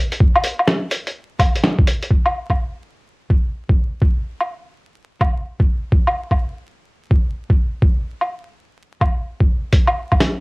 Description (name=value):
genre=future garage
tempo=126 BPM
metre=4/4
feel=swing 65% on 16ths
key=none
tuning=none
part: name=lo-fi sampler-style drum kit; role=drums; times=0.1-10.3 s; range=hi-hat, snare drum, woodblock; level=-18 LUFS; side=equal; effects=cassette tape
part: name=electronic kick drum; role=drums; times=0.2-10.2 s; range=none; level=-16 LUFS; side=equal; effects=overdrive, cassette tape
room=light reverb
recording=home recording on cassette, vinyl crackle, lossy compression artefacts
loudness=-16 LUFS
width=side -30 dB against mid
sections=0.0-2.1 A section; 2.1-9.7 B section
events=none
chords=none